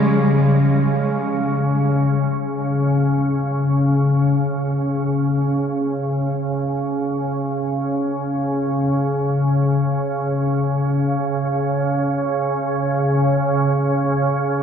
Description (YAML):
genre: ambient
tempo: free time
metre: none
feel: none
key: unclear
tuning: A4 = 440 Hz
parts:
  - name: organ-like drone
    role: drone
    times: 0.0-14.6 s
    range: Db3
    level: -17 LUFS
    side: equal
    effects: ensemble chorus, built-in reverb
room: wet huge ambient reverb, RT60 7.2 s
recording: worn, warbling old tape, cassette tape, warbly pitch drift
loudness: -17 LUFS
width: side -7 dB against mid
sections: 0.0-5.3 A section; 5.3-14.6 B section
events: none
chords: none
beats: free time